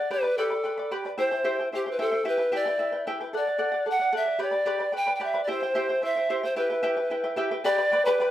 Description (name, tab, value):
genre	andean folk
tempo	111 BPM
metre	2/4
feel	straight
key	unclear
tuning	A4 = 441 Hz
part	polished pan flute	melody	0.0-8.3 s	G4 to G5	-25 LUFS	equal	none
part	charango	accompaniment	0.0-8.3 s	E4 to B5	-29 LUFS	right 1 dB	none
room	moderate studio ambience, RT60 0.5 s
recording	none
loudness	-24 LUFS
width	side -12 dB against mid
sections	0.0-7.6 A section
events	none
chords	0.1 G; 1.2 C; 2.3 Em; 3.3 D; 4.4 G; 5.5 C; 6.6 Em; 7.6 G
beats	| 0.10 0.64 | 1.18 1.72 | 2.26 2.79 | 3.33 3.87 | 4.41 4.95 | 5.49 6.03 | 6.57 7.11 | 7.64 8.18